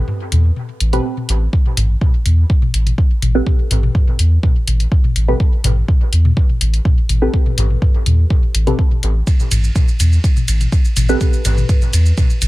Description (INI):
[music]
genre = dub techno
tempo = 124 BPM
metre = 4/4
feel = straight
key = A minor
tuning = A4 = 436 Hz
[part]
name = deep mellow chord stab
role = stabs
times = 0.0-12.5 s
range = C4 to B4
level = -23 LUFS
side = right 1 dB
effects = chorus, phaser, sidechain pumping, dub echo
[part]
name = soft dub sub bass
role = bass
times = 0.0-12.5 s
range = A1 to E2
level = -14 LUFS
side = equal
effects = sidechain pumping
[part]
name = electronic toms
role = percussion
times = 0.1-12.5 s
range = none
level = -24 LUFS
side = left 3 dB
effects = sidechain pumping on toms, dub echo
[part]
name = deep house drum kit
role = drums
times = 0.3-12.5 s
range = hi-hat, ride cymbal, shaker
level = -23 LUFS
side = equal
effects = none
[part]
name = electronic kick drum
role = drums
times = 1.5-12.3 s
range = none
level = -14 LUFS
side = equal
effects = none
[sound]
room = little or no reverb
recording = none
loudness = -12 LUFS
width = side -18 dB against mid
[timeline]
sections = 0.0-1.5 A section; 1.5-12.5 A section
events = break 0.0-1.5; filter sweep on synth stab 1.5-12.5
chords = 0.0 Am9